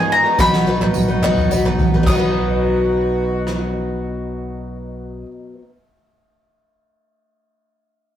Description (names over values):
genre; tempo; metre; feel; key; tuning
indie folk with a building arrangement; 71 BPM (dotted quarters); 6/8; straight; B major; A4 = 439 Hz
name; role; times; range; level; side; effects
mandolin; melody; 0.0-5.2 s; G#5 to D#6; -18 LUFS; left 1 dB; none
picked twelve-string acoustic guitar; accompaniment; 0.0-5.7 s; B2 to B4; -21 LUFS; left 2 dB; none
clear brass ensemble; sustained chords; 0.0-5.2 s; D#3 to G#4; -32 LUFS; right 1 dB; none
warm upright piano; arpeggios; 0.0-5.3 s; F#4 to G#5; -28 LUFS; right 2 dB; none
fingered electric bass; bass; 0.0-5.2 s; B1 to G#2; -23 LUFS; equal; none
soft-mallet drum kit; drums; 0.1-3.6 s; crash cymbal, kick drum, ride cymbal, rim click, snare drum, toms; -20 LUFS; right 1 dB; none
group handclap; percussion; 0.3-2.3 s; none; -31 LUFS; right 2 dB; none
tambourine; percussion; 0.4-2.3 s; none; -36 LUFS; right 5 dB; none
room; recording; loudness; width
moderate small room reverb, RT60 0.6 s; rough rehearsal-room recording; -15 LUFS; side -10 dB against mid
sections
0.0-2.1 A section; 2.1-5.4 B section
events
drum fill 0.4-2.1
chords
0.4 B